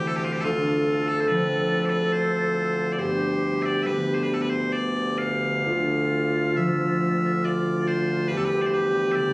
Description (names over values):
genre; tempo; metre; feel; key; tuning
celtic folk, Celtic slow air; 69 BPM; 3/4; uneven beats, rubato; D dorian; A4 = 439 Hz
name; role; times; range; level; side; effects
loud bright bagpipes; melody; 0.0-9.3 s; D2 to F5; -26 LUFS; equal; none
bright reedy baroque flute; second line; 0.0-9.3 s; E4 to A4; -25 LUFS; equal; none
concert harp; accompaniment; 0.0-9.3 s; C2 to C4; -27 LUFS; equal; none
pipe organ, principal chorus; sustained chords; 0.0-9.3 s; B2 to G4; -35 LUFS; equal; none
room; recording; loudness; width
moderate recital hall reverb, RT60 1.5 s; recorded on a phone in the room, club reverb; -21 LUFS; side -25 dB against mid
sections
0.0-9.3 A section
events
none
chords
0.4 Dm7; 3.0 G; 5.7 Dm; 8.3 Em7